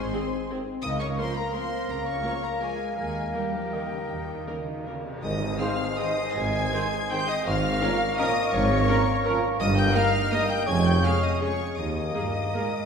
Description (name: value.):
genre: classical, orchestral ballroom waltz.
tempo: 150-185 BPM.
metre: 3/4.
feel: rubato.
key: Ab major.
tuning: A4 = 440 Hz.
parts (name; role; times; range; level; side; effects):
warm studio violin section; melody; 0.0-12.9 s; G5 to Bb6; -34 LUFS; left 3 dB; none.
concert flute; second line; 0.0-12.9 s; Db5 to Eb6; -35 LUFS; left 3 dB; none.
dark cor anglais; second line; 0.0-12.9 s; Db5 to Ab5; -36 LUFS; right 1 dB; none.
mellow clarinet; second line; 0.0-12.6 s; Ab4 to C5; -35 LUFS; right 1 dB; none.
warm studio violin section; second line; 0.0-12.9 s; G4 to Ab5; -34 LUFS; left 2 dB; none.
mellow bassoon; accompaniment; 0.0-12.9 s; Ab3 to Db4; -32 LUFS; left 2 dB; none.
mellow French horn section; sustained chords; 0.0-12.7 s; G3 to F4; -39 LUFS; left 3 dB; none.
warm studio cello section; bass; 0.0-12.9 s; Eb2 to G3; -32 LUFS; right 3 dB; none.
warm studio double bass section; bass; 0.0-12.1 s; F1 to Eb2; -31 LUFS; right 2 dB; none.
clear studio viola section; accompaniment; 0.1-12.6 s; Bb3 to Bb4; -35 LUFS; equal; none.
warm trombone section; sustained chords; 0.1-12.7 s; F2 to C4; -36 LUFS; right 3 dB; none.
cymbal swell and tam-tam; percussion; 3.0-6.7 s; none; -40 LUFS; left 2 dB; none.
clear tuba; bass; 5.2-12.1 s; F1 to Eb2; -33 LUFS; right 1 dB; none.
clear trumpet section; stabs; 5.6-12.7 s; Ab4 to C5; -34 LUFS; right 1 dB; none.
room: wet scoring stage reverb, RT60 1.7 s.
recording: heard from further back in the room.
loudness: -23 LUFS.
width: side -6 dB against mid.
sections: 0.0-5.2 A section; 5.2-12.9 B section.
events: band accent 5.2-5.6.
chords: 0.0 Ab; 0.8 Bbm/Db; 3.0 Eb; 5.2 Ab; 7.5 Bbm7/Ab; 9.6 Eb/G; 10.7 Db/F; 11.8 Ebsus4.